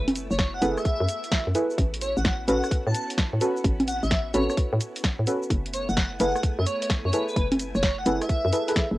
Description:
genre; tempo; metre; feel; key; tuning
UK garage, two-step garage; 129 BPM; 4/4; swing 67% on 16ths; unclear; A4 = 440 Hz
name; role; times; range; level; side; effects
soft string machine; sustained chords; 0.0-9.0 s; A3 to G#5; -40 LUFS; equal; ensemble chorus, sidechain pumping, cassette tape
hollow knocking FM bass; bass; 0.0-9.0 s; F#1 to A2; -27 LUFS; equal; none
punchy analog drum machine; drums; 0.1-8.9 s; congas, hi-hat, rim click, shaker, snare drum; -27 LUFS; equal; none
airy dreamy lead; melody; 0.3-8.9 s; B4 to A5; -30 LUFS; equal; chorus, cassette tape, analog delay
electronic kick drum; drums; 0.4-8.9 s; none; -25 LUFS; equal; none
deep mellow chord stab; stabs; 0.6-8.7 s; C#4 to B4; -27 LUFS; equal; chorus, cassette tape, analog delay
room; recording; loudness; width
moderate booth ambience, RT60 0.2 s; home recording on cassette; -22 LUFS; side -17 dB against mid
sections
0.0-9.0 A section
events
none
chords
0.0 F#m11; 1.8 A69; 5.5 F#m11

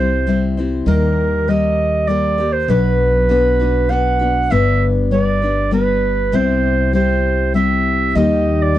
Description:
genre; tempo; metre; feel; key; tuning
acoustic folk duo or small band; 99 BPM; 3/4; straight; unclear; A4 = 440 Hz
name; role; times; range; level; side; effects
mellow clarinet; melody; 0.0-8.8 s; Bb4 to F#5; -18 LUFS; right 4 dB; none
picked steel-string acoustic guitar; accompaniment; 0.0-8.8 s; G2 to C5; -17 LUFS; left 4 dB; none
upright bass; bass; 0.0-8.8 s; G1 to Eb2; -19 LUFS; right 1 dB; none
room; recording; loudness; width
little or no reverb; dry, close 1970s-style studio recording; -14 LUFS; side -13 dB against mid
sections
0.0-8.8 A section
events
none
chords
0.0 C; 0.9 Eb; 2.7 Bm; 4.5 G; 6.3 C; 8.2 Eb

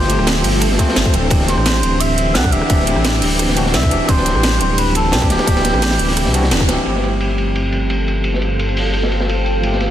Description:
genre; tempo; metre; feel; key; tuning
liquid drum and bass; 173 BPM; 4/4; straight; unclear; A4 = 441 Hz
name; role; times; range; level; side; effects
trumpet with cup mute; melody; 0.0-6.5 s; G4 to F#5; -22 LUFS; equal; tape echo
overdriven tine electric piano; accompaniment; 0.0-9.9 s; E3 to C5; -21 LUFS; equal; fast tremolo, ping-pong delay
shimmering ambient pad; sustained chords; 0.0-9.9 s; E3 to G5; -24 LUFS; equal; chorus, built-in reverb
dark detuned saw bass; bass; 0.0-9.9 s; D1 to C2; -18 LUFS; equal; none
crunchy breakbeat drum kit; drums; 0.0-9.9 s; hi-hat, ride cymbal, snare drum; -22 LUFS; equal; high-pass filter on cymbals, low-pass filter on cymbals, studio reverb, high-pass filter on hats, low-pass filter on hats, high-pass filter on snare, low-pass filter on snare, high-pass filter on room, low-pass filter on room
drum and bass drum kit; drums; 0.1-6.8 s; hi-hat, ride cymbal, rim click, snare drum; -21 LUFS; right 1 dB; overdrive, studio reverb
electronic kick drum; drums; 0.8-6.7 s; none; -16 LUFS; equal; overdrive, studio reverb
room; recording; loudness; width
light reverb, small room reverb; dense, heavily limited modern master; -13 LUFS; side -11 dB against mid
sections
0.0-6.9 A section; 6.9-9.9 B section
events
drop 0.0-6.9; band accent 6.5; filter sweep on ambient pad 6.9-9.9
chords
0.0 G9sus4; 1.1 D9sus4; 6.9 G9sus4

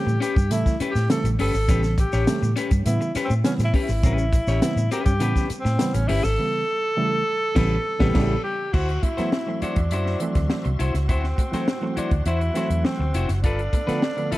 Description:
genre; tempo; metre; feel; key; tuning
funk; 102 BPM; 4/4; straight; A mixolydian; A4 = 443 Hz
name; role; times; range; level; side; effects
breathy tenor saxophone; melody; 0.0-14.4 s; C4 to A4; -27 LUFS; equal; none
barky reed electric piano; stabs; 0.0-14.4 s; C#3 to C#4; -28 LUFS; right 2 dB; overdrive
electric guitar at the edge of break-up; accompaniment; 0.1-14.4 s; C#4 to C#5; -30 LUFS; left 4 dB; none
vintage muted fingered electric bass; bass; 0.1-14.3 s; F1 to A2; -23 LUFS; equal; none
egg shaker; percussion; 0.1-6.4 s; none; -42 LUFS; left 4 dB; none
compact cocktail drum kit; drums; 0.2-14.4 s; crash cymbal, hi-hat, kick drum, snare drum; -24 LUFS; equal; none
bright tonewheel organ; sustained chords; 8.7-14.4 s; F#4 to C6; -37 LUFS; equal; overdrive, chorus vibrato, fast rotary speaker
room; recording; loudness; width
light reverb, studio ambience; dark, warm production; -20 LUFS; side -17 dB against mid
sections
0.0-8.7 A section; 8.7-14.4 B section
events
silent gap 6.4-8.7; band accent 7.6-8.7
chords
0.0 A9; 8.7 D9; 13.4 G9

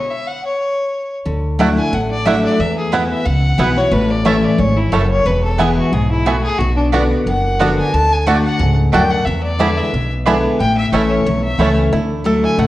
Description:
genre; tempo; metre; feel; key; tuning
bluegrass; 180 BPM; 4/4; swing 54% on 8ths; unclear; A4 = 441 Hz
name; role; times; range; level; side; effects
clear fiddle; melody; 0.0-12.7 s; D4 to A5; -20 LUFS; left 1 dB; none
picked steel-string acoustic guitar; accompaniment; 1.3-12.7 s; E2 to F#4; -17 LUFS; left 1 dB; none
upright bass; bass; 1.3-12.7 s; E1 to E2; -19 LUFS; equal; none
bluegrass banjo; melody; 1.6-12.7 s; A3 to A4; -22 LUFS; right 3 dB; none
mandolin; stabs; 1.6-11.7 s; A3 to B5; -22 LUFS; right 4 dB; none
room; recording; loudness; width
moderate recital hall reverb, RT60 1.3 s; worn, warbling old tape, cassette tape, warbly pitch drift; -13 LUFS; side -15 dB against mid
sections
0.0-1.3 A section; 1.3-11.9 B section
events
stop 0.0-1.3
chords
0.0 N.C.; 1.3 Dadd9; 2.6 Esus2; 3.9 A; 5.3 E; 6.6 Bm; 7.9 D; 9.3 E7; 10.6 A; 11.9 Dadd9

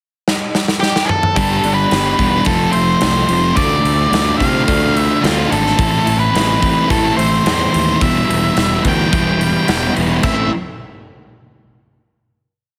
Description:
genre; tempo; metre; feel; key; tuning
quiet-loud alternative rock; 108 BPM; 4/4; straight; A minor; A4 = 440 Hz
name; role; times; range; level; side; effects
big rock drum kit; drums; 0.3-10.4 s; crash cymbal, hi-hat, kick drum, snare drum, toms; -22 LUFS; equal; none
octave-fuzz lead guitar; melody; 0.8-10.5 s; F4 to G5; -20 LUFS; equal; distortion
semi-hollow electric guitar; arpeggios; 1.4-10.5 s; E2 to E4; -26 LUFS; equal; none
thick fuzz guitar; riff; 1.4-10.5 s; A2 to G4; -19 LUFS; equal; distortion
fuzz fingered electric bass; bass; 1.4-10.5 s; E1 to C3; -22 LUFS; equal; overdrive
room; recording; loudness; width
light reverb, small room ambience; heavily compressed radio sound, multiband compression; -15 LUFS; mono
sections
0.0-1.4 pickup bar; 1.4-10.2 verse; 10.2-12.4 final chord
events
drum fill 0.3-1.4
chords
0.0 N.C.; 1.4 G; 2.5 F; 3.6 Dm7; 5.8 Am; 8.0 Em; 10.2 Am

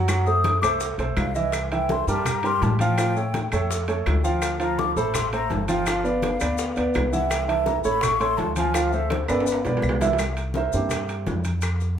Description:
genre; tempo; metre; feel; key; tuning
Afro-Cuban jazz; 166 BPM; 4/4; straight; unclear; A4 = 441 Hz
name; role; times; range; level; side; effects
warm grand piano; accompaniment; 0.0-11.2 s; E3 to F#5; -24 LUFS; right 3 dB; none
upright bass; bass; 0.0-12.0 s; G1 to A2; -26 LUFS; left 1 dB; none
bongos; percussion; 0.1-12.0 s; none; -34 LUFS; left 3 dB; none
claves; percussion; 0.1-11.8 s; none; -35 LUFS; left 1 dB; none
congas; percussion; 0.1-12.0 s; none; -33 LUFS; left 2 dB; none
maracas; percussion; 0.1-12.0 s; none; -38 LUFS; left 6 dB; none
timbales; percussion; 0.1-11.8 s; none; -32 LUFS; right 2 dB; none
mellow hollow concert flute; second line; 0.3-9.6 s; A4 to D#6; -27 LUFS; left 6 dB; none
room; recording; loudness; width
moderate large studio reverb, RT60 0.9 s; band playing live in one room; -21 LUFS; side -9 dB against mid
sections
0.0-10.2 A section; 10.2-12.0 A section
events
flute solo 0.0-10.2; drum fill 9.1-10.2; grand piano solo 10.2-12.0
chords
0.1 F#dim7; 1.5 C7; 3.0 Aaug7; 4.4 Dm7; 5.9 G7; 7.3 C; 8.0 Aaug; 8.8 Dm7; 9.5 G; 10.2 C9

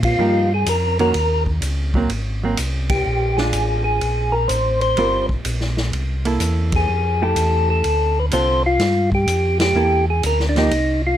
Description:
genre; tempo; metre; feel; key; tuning
soul jazz organ trio; 125 BPM; 4/4; swing 68% on 8ths; unclear; A4 = 440 Hz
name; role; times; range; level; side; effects
percussive tonewheel organ; melody; 0.0-11.2 s; D4 to C5; -19 LUFS; left 1 dB; slow rotary speaker
mellow tonewheel organ; bass; 0.0-11.2 s; G1 to Bb2; -20 LUFS; equal; slow rotary speaker
vintage drum kit; drums; 0.0-10.9 s; hi-hat, kick drum, ride cymbal, snare drum; -26 LUFS; equal; none
hollow-body jazz guitar; accompaniment; 0.2-10.7 s; D3 to Bb4; -22 LUFS; right 4 dB; none
room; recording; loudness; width
light reverb; none; -16 LUFS; side -11 dB against mid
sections
0.0-11.2 A section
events
band accent 0.0, 2.8, 6.6, 9.5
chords
0.0 F9sus4; 1.1 Ebm7; 2.1 Ab9; 3.1 Bb; 5.0 Gm7; 5.9 C6; 6.9 Fmaj9; 7.8 Dm7; 8.8 Fsus2; 9.8 Gm13

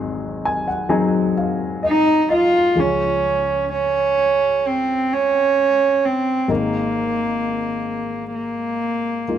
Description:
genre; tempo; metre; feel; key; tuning
acoustic folk-pop ballad; 65 BPM; 4/4; straight; Db major; A4 = 440 Hz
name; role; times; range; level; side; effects
dark baby grand piano; accompaniment; 0.0-9.4 s; Ab1 to Ab5; -23 LUFS; left 3 dB; none
warm cello; melody; 1.9-9.4 s; Bb3 to F4; -17 LUFS; right 2 dB; none
room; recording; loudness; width
light reverb; close, detailed microphones; -17 LUFS; side -10 dB against mid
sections
0.0-2.8 A section; 2.8-9.4 B section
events
none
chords
0.0 Ab7; 2.8 Db; 6.5 Absus2

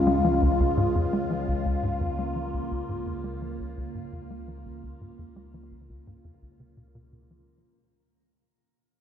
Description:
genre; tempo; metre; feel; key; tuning
ambient, sequencer-driven space music; 85 BPM; 4/4; straight; unclear; A4 = 440 Hz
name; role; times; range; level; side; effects
phased analog pad; sustained chords; 0.0-7.4 s; C#2 to E#4; -27 LUFS; left 1 dB; phaser, chorus, shimmer reverb
tight sequencer bass; riff; 0.1-7.4 s; C#2 to G#3; -29 LUFS; left 1 dB; wide subtle chorus, ping-pong delay
room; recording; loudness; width
wet plate reverb, RT60 2.6 s; dark, warm production; -25 LUFS; side -9 dB against mid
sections
0.0-7.5 A section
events
fade-out 0.0-7.5; filter sweep on analog synth bass 0.0-7.5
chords
0.0 C#

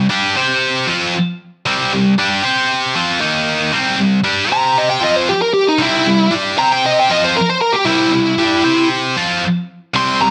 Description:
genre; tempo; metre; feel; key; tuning
rock; 116 BPM; 4/4; straight; unclear; A4 = 439 Hz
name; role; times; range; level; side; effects
heavy high-gain guitar; riff; 0.0-10.3 s; C3 to C5; -17 LUFS; equal; distortion
bluesy overdriven lead guitar; melody; 4.5-10.3 s; Eb4 to C6; -16 LUFS; equal; distortion
room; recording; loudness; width
moderate large studio reverb, RT60 1.0 s; none; -15 LUFS; mono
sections
0.0-3.7 A section; 3.7-10.3 B section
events
lead electric guitar solo 3.7-10.3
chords
0.0 C5; 3.2 Eb5; 3.7 C

